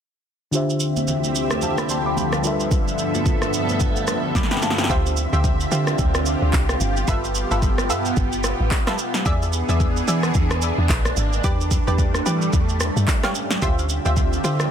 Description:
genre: amapiano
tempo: 110 BPM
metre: 4/4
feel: swing 58% on 16ths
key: D dorian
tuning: A4 = 441 Hz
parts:
  - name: mellow FM electric piano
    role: accompaniment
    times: 0.5-5.0 s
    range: D3 to D6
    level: -25 LUFS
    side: left 1 dB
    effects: chorus
  - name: lush unison pad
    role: sustained chords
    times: 0.5-14.7 s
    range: D2 to E5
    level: -24 LUFS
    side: right 1 dB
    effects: chorus, phaser, sidechain pumping
  - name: deep house drum kit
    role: drums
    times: 0.5-14.7 s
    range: handclaps, kick drum, rim click, shaker, snare drum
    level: -22 LUFS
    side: equal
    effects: soft clipping on snare
  - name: congas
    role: percussion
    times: 1.0-4.5 s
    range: none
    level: -30 LUFS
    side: right 3 dB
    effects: none
  - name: punchy chord stab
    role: stabs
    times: 4.9-14.7 s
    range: F4 to E#5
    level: -27 LUFS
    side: equal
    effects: chorus, ping-pong delay
  - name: deep log drum bass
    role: bass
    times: 4.9-14.7 s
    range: G1 to E3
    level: -22 LUFS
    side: equal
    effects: none
room: light reverb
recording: dense, heavily limited modern master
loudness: -18 LUFS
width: side -8 dB against mid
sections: 0.5-4.9 A section; 4.9-14.7 B section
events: drum fill 4.4-4.9; drop 4.9-14.7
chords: 0.5 Dm11; 2.4 G13; 4.9 Dm11; 6.8 G13; 9.3 E7; 10.9 Bb7; 11.4 A9sus4/E; 13.1 Aaug7; 13.6 Dm11

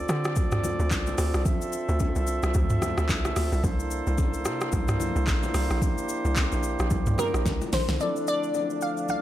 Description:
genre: amapiano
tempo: 110 BPM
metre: 4/4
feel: swing 58% on 16ths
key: D minor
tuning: A4 = 441 Hz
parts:
  - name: mellow brass ensemble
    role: sustained chords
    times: 0.0-9.2 s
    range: D3 to E5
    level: -30 LUFS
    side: right 1 dB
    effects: sidechain pumping
  - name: tight log drum bass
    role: bass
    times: 0.0-8.0 s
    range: Bb1 to D3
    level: -27 LUFS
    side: equal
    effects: none
  - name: smooth R&B drum kit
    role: drums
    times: 0.1-9.2 s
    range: handclaps, hi-hat, kick drum, rim click, shaker, snare drum, toms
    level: -28 LUFS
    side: equal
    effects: none
  - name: congas and bongos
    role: percussion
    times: 0.4-9.2 s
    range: none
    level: -37 LUFS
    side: left 2 dB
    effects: none
  - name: glassy wavetable pluck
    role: melody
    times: 7.2-9.2 s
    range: Bb4 to F5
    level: -27 LUFS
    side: left 1 dB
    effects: chorus, ping-pong delay
  - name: barky tine electric piano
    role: accompaniment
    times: 8.0-9.2 s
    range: F3 to A4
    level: -33 LUFS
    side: left 6 dB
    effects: none
room: digital ambience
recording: none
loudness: -23 LUFS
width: side -13 dB against mid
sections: 0.0-8.0 A section; 8.0-9.2 B section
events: drop 0.0-8.0; drum fill 7.5-8.0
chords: 0.0 Dm7; 3.6 C13; 8.0 Dm7

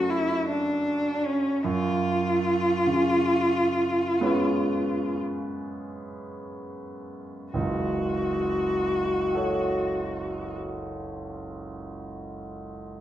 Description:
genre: classical, romantic duo for cello and grand piano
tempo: 31-54 BPM (dotted quarters)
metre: 12/8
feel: rubato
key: F# minor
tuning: A4 = 441 Hz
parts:
  - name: rich cello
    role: melody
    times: 0.0-10.6 s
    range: C#4 to F#4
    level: -25 LUFS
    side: equal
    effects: none
  - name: bright concert grand piano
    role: accompaniment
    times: 0.0-13.0 s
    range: F#1 to C#5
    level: -29 LUFS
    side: right 1 dB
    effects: none
room: wet recital hall reverb, RT60 1.5 s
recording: minimal, uncompressed stereo recording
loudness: -23 LUFS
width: side -12 dB against mid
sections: 0.0-7.5 A section; 7.5-13.0 B section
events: slowing down 0.0-7.5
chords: 0.0 F#m; 1.6 C#7/F#; 7.5 F#m

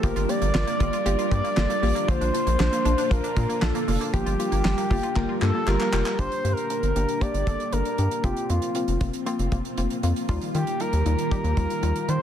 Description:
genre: synth-pop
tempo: 117 BPM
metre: 4/4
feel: straight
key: G minor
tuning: A4 = 440 Hz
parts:
  - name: expressive portamento lead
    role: melody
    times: 0.0-12.2 s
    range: F4 to D5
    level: -28 LUFS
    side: equal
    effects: chorus, digital delay
  - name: soft round pluck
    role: accompaniment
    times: 0.0-12.2 s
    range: G3 to Bb4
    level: -30 LUFS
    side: left 3 dB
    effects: chorus
  - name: string machine, cellos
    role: sustained chords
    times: 0.0-12.2 s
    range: Eb3 to Bb4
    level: -30 LUFS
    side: equal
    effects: ensemble chorus
  - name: analog pluck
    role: arpeggios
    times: 0.0-6.1 s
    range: D3 to F4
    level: -34 LUFS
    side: right 3 dB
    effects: chorus, digital delay
  - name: rubbery square bass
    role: bass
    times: 0.0-12.2 s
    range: F1 to Eb3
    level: -25 LUFS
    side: equal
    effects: none
  - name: damped 70s drum kit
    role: drums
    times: 0.0-12.2 s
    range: handclaps, hi-hat, kick drum, snare drum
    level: -29 LUFS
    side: equal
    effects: none
room: light reverb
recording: dense, heavily limited modern master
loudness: -22 LUFS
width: side -10 dB against mid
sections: 0.0-6.2 A section; 6.2-12.2 B section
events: drum fill 5.2-6.2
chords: 0.0 Gm7; 2.1 Bb; 4.1 Gm7; 6.2 Gm; 8.2 Fsus4; 10.3 Ebadd9

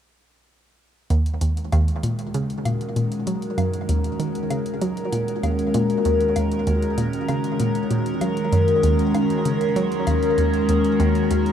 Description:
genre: ambient, sequencer-driven space music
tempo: 97 BPM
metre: 4/4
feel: straight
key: Eb minor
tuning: A4 = 440 Hz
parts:
  - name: evolving wavetable pad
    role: sustained chords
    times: 1.6-11.5 s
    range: Eb3 to Bb4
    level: -22 LUFS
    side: left 1 dB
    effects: chorus, built-in reverb, phaser, shimmer reverb
  - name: hollow square pluck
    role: riff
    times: 1.1-11.5 s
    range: Eb2 to Gb3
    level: -22 LUFS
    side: right 1 dB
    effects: chorus, phaser, vintage 12-bit sampler grit, tape echo
  - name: electronic hi-hat and woodblock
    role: percussion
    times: 1.1-11.5 s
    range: none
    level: -36 LUFS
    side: left 3 dB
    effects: tape echo
room: wet huge ambient reverb, RT60 8.6 s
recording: cassette tape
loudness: -19 LUFS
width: side -9 dB against mid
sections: 1.1-11.5 A section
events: none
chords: 1.1 Ebm7

